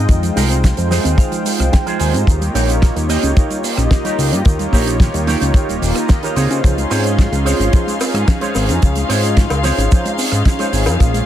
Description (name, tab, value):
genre	nu-disco, nu disco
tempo	110 BPM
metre	4/4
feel	straight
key	unclear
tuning	A4 = 440 Hz
part	warm analog pad	accompaniment	0.0-11.3 s	Ab3 to C6	-21 LUFS	equal	wide subtle chorus, tape echo
part	soft round pluck	arpeggios	0.0-11.2 s	Eb3 to F4	-24 LUFS	right 2 dB	chorus, vintage 12-bit sampler grit, sidechain pumping, ping-pong delay
part	electric guitar with an envelope filter	riff	0.0-10.9 s	Eb4 to Ab5	-24 LUFS	right 3 dB	lush chorus, tape echo
part	fat analog bass	bass	0.0-11.2 s	Eb1 to Db3	-17 LUFS	equal	none
part	damped 70s drum kit	drums	0.1-11.3 s	hi-hat, rim click, shaker, snare drum	-23 LUFS	right 3 dB	none
part	kick drum	drums	0.1-11.1 s	none	-12 LUFS	equal	none
part	rich symphonic string section	sustained chords	6.6-11.3 s	F5	-26 LUFS	left 7 dB	sidechain pumping
part	cowbell	percussion	8.0-11.0 s	none	-25 LUFS	left 4 dB	none
room	studio reverb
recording	none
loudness	-13 LUFS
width	side -11 dB against mid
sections	0.0-11.3 A section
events	clean electric guitar fill 0.6-2.3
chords	0.0 Fm7; 2.3 Eb7; 6.4 Dbmaj7